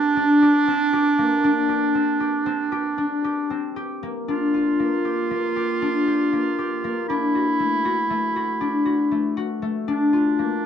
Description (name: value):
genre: contemporary instrumental, chamber music in an uneven meter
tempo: 236 BPM (eighths)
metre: 11/8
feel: straight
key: unclear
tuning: A4 = 439 Hz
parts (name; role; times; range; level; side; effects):
- clear clarinet; second line; 0.0-10.7 s; D4 to F4; -22 LUFS; right 4 dB; none
- concert harp; arpeggios; 0.0-10.7 s; A3 to G4; -22 LUFS; left 3 dB; none
room: moderate studio reverb, RT60 0.5 s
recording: dark, warm production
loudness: -19 LUFS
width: side -8 dB against mid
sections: 0.0-4.3 A section; 4.3-10.7 B section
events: none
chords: 0.0 Csus2; 4.3 Gm7; 7.1 Dadd9; 9.9 Gm7 (rootless)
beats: 0.17 0.42 0.68 0.93 1.19 | 1.44 1.70 1.95 2.21 2.46 2.72 2.98 3.24 3.51 3.77 4.03 | 4.29 4.54 4.80 5.06 5.31 5.57 5.82 6.08 6.33 6.59 6.84 | 7.09 7.35 7.60 7.85 8.11 8.36 8.61 8.87 9.12 9.37 9.63 | 9.88 10.13 10.39 10.64